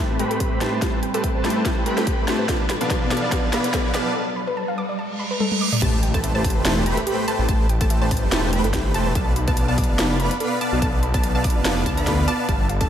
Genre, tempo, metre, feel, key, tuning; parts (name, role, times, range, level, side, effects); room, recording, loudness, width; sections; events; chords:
future bass; 144 BPM; 4/4; swing 55% on 16ths, half-time; A minor; A4 = 440 Hz
airy breathy pad; sustained chords; 0.0-4.1 s; A2 to B5; -31 LUFS; equal; chorus, sidechain pumping
soft round pluck; arpeggios; 0.0-12.9 s; G4 to D6; -30 LUFS; right 1 dB; chorus, sidechain pumping, analog delay
dense compressed supersaw; riff; 0.0-12.9 s; G3 to B5; -24 LUFS; equal; sidechain pumping, low-pass filter, analog delay
riser, reverse cymbal and impact; sound effects; 2.6-7.5 s; -29 LUFS; equal
trap drum kit; drums; 0.2-12.9 s; crash cymbal, hi-hat, snare drum, toms; -26 LUFS; left 1 dB; overdrive, small room ambience
electronic kick drum; drums; 0.4-12.9 s; -23 LUFS; equal; overdrive, small room ambience
wide unison pluck; arpeggios; 5.8-12.9 s; A5 to B5; -31 LUFS; right 1 dB; vintage 12-bit sampler grit, sidechain pumping
wide detuned saw bass; bass; 5.8-12.9 s; E1 to D2; -23 LUFS; equal; chorus, sidechain pumping
moderate lush hall reverb, RT60 1.8 s; dreamy mix soaked in reverb; -19 LUFS; side -10 dB against mid
0.0-5.8 A section; 5.8-12.9 B section
build-up 0.0-5.8; drum fill 0.0-4.2, 5.4-5.8; riser 2.6-5.8; reverse cymbal 5.0-5.8; drop 5.8-12.9; impact 5.8-7.5
0.0 Am9; 2.5 Bm7b5; 5.8 Am9; 9.2 Bm7b5